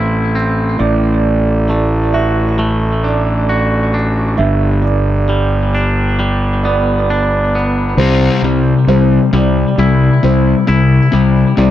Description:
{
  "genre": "rock",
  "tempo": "67 BPM",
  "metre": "4/4",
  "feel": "straight",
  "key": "C lydian",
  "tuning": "A4 = 441 Hz",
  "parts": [
    { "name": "felt-muted upright piano", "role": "arpeggios", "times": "0.0-11.7 s", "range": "C5 to E5", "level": "-20 LUFS", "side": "right 6 dB", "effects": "digital delay" },
    { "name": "twangy electric guitar", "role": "arpeggios", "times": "0.0-11.7 s", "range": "G2 to F#4", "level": "-19 LUFS", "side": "equal", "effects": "digital delay" },
    { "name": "fuzz fingered electric bass", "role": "bass", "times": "0.0-11.7 s", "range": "G1 to C2", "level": "-14 LUFS", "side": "equal", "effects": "overdrive" },
    { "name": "sludgy distorted guitar", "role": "riff", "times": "8.0-11.7 s", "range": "C3 to C4", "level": "-11 LUFS", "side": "left 5 dB", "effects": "overdrive" }
  ],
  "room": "light reverb",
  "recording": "dark, warm production",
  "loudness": "-11 LUFS",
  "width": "side -12 dB against mid",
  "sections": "0.0-8.0 A section; 8.0-11.7 B section",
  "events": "build-up 8.0-11.7",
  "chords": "0.0 Am; 0.8 D/A; 4.4 G; 8.0 C",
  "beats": "| 0.80 1.70 2.60 3.50 | 4.39 5.29 6.19 7.09 | 7.99 8.88 9.78 10.68 | 11.58"
}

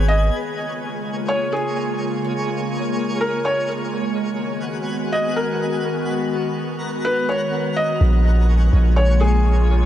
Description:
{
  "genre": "hip hop",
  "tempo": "125 BPM",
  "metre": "4/4",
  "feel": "half-time",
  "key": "unclear",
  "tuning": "A4 = 441 Hz",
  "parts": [
    { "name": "felt-muted upright piano", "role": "melody", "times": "0.0-9.9 s", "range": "G#4 to D#5", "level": "-24 LUFS", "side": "equal", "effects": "digital delay" },
    { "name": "warbly tape-like pad", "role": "sustained chords", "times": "0.0-9.9 s", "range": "C#3 to G#4", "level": "-24 LUFS", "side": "left 1 dB", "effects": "chorus, built-in reverb, phaser" },
    { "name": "long sustained 808-style bass", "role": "bass", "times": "0.0-0.3, 8.0-9.9 s", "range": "G#1 to A#1", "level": "-15 LUFS", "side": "equal", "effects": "none" },
    { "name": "twinkling granular texture", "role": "texture", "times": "0.0-9.9 s", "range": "A#3 to G#5", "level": "-29 LUFS", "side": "right 1 dB", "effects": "built-in reverb" }
  ],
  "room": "light reverb, digital ambience",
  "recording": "none",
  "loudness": "-18 LUFS",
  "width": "side -12 dB against mid",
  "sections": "0.3-8.0 A section; 8.0-9.9 B section",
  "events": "none",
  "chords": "0.3 A#m7; 4.2 G#m7; 8.0 A#m7",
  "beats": "| 0.33 0.81 1.29 1.77 | 2.25 2.73 3.21 3.69 | 4.17 4.65 5.13 5.61 | 6.09 6.57 7.05 7.53 | 8.01 8.49 8.97 9.45"
}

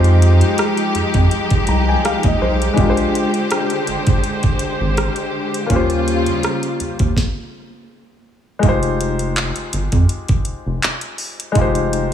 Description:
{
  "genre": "contemporary R&B",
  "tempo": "82 BPM",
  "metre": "4/4",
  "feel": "swing 54% on 16ths",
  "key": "F minor",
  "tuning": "A4 = 441 Hz",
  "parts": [
    { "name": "warm concert grand piano", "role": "accompaniment", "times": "0.0-12.1 s", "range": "Ab3 to Bb5", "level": "-21 LUFS", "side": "left 3 dB", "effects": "none" },
    { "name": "warm studio string section", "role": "sustained chords", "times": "0.0-7.2 s", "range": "Db3 to C5", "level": "-20 LUFS", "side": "equal", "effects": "none" },
    { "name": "rubbery square bass", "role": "bass", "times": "0.0-12.1 s", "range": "F1 to F2", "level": "-17 LUFS", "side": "right 1 dB", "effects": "none" },
    { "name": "smooth R&B drum kit", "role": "drums", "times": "0.0-12.1 s", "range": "handclaps, hi-hat, kick drum, rim click, snare drum", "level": "-20 LUFS", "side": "right 1 dB", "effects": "none" }
  ],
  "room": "light reverb, small room reverb",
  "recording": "studio ambience",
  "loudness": "-15 LUFS",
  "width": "side -9 dB against mid",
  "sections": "0.0-8.6 A section; 8.6-12.1 B section",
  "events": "grand piano fill 1.3-2.8; stop 7.2-8.6",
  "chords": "0.0 Fm9; 2.8 Bb13 (rootless); 5.7 Eb13; 7.9 N.C.; 8.6 Fm9",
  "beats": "0.58 1.31 2.04 | 2.78 3.51 4.24 4.97 | 5.70 6.43 7.17 7.90 | 8.63 9.36 10.09 10.82 | 11.56"
}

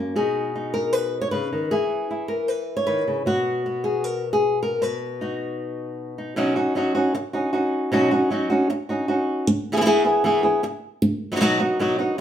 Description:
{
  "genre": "flamenco",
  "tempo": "155 BPM",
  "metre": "4/4",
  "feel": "straight",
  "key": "B major",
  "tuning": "A4 = 440 Hz",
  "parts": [
    { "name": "flamenco guitar", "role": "solo", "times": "0.0-12.2 s", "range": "F#2 to C#5", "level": "-20 LUFS", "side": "equal", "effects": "none" }
  ],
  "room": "wet studio reverb, RT60 0.8 s",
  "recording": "band playing live in one room",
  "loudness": "-20 LUFS",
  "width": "side -10 dB against mid",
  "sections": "0.0-6.4 A section; 6.4-12.2 B section",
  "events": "none",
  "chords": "0.2 B; 1.7 E; 3.3 N.C.; 4.8 B; 6.4 Badd9; 9.5 E; 11.0 B",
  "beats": "| 0.17 0.56 0.94 1.33 | 1.72 2.11 2.50 2.88 | 3.27 3.66 4.05 4.44 | 4.82 5.21 5.60 5.99 | 6.38 6.76 7.15 7.54 | 7.93 8.31 8.70 9.09 | 9.47 9.86 10.25 10.64 | 11.02 11.41 11.80 12.19"
}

